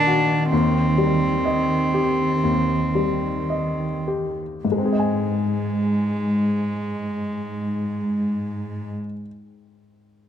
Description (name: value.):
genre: cinematic, emotional film score for orchestra.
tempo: 51-68 BPM.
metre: 4/4.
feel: rubato.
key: Ab major.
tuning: A4 = 440 Hz.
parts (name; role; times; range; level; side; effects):
warm cello; melody; 0.0-8.9 s; Ab3 to D4; -24 LUFS; right 1 dB; none.
clear baby grand piano; accompaniment; 0.0-10.3 s; Eb2 to Ab5; -24 LUFS; left 4 dB; none.
warm studio cello section; bass; 0.0-8.9 s; Ab2 to Eb3; -24 LUFS; right 1 dB; none.
room: moderate recital hall reverb, RT60 1.4 s.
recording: close, detailed microphones.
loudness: -20 LUFS.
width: side -9 dB against mid.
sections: 0.0-4.6 A section; 4.6-9.2 B section.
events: slowing down 0.0-4.6.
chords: 0.0 Ebm; 0.5 Cm/Eb; 4.6 Ab.